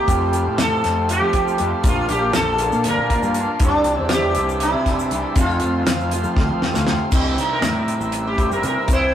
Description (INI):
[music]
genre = psychedelic rock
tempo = 238 BPM (eighths)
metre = 7/8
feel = straight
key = C mixolydian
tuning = A4 = 440 Hz
[part]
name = sitar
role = melody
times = 0.0-9.1 s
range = D4 to C5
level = -21 LUFS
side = equal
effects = none
[part]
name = overdriven combo organ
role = sustained chords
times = 0.0-9.1 s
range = Bb3 to F5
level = -29 LUFS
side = equal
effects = none
[part]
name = electric guitar through a small old amp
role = riff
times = 0.0-9.1 s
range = F2 to G4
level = -24 LUFS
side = equal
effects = phaser
[part]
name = fuzz fingered electric bass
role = bass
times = 0.1-9.1 s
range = G1 to F3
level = -24 LUFS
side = equal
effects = overdrive
[part]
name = damped 70s drum kit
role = drums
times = 0.1-9.0 s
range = crash cymbal, hi-hat, kick drum, snare drum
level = -21 LUFS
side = equal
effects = none
[part]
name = tube shaker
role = percussion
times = 0.1-9.0 s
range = none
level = -39 LUFS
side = left 6 dB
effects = none
[sound]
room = wet stone room reverb, RT60 1.3 s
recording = rough rehearsal-room recording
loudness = -17 LUFS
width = side -10 dB against mid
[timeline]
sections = 0.0-7.1 A section; 7.1-9.1 B section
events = drum fill 6.4-7.1; sitar solo 7.1-9.1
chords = 0.1 Fadd9; 1.8 Bb; 3.6 Cadd9; 5.4 F; 7.1 C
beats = | 0.09 0.34 0.59 0.84 1.09 1.34 1.59 | 1.85 2.10 2.35 2.60 2.85 3.10 3.36 | 3.61 3.86 4.11 4.36 4.61 4.87 5.12 | 5.37 5.62 5.87 6.12 6.38 6.63 6.88 | 7.13 7.38 7.64 7.89 8.14 8.39 8.64 | 8.89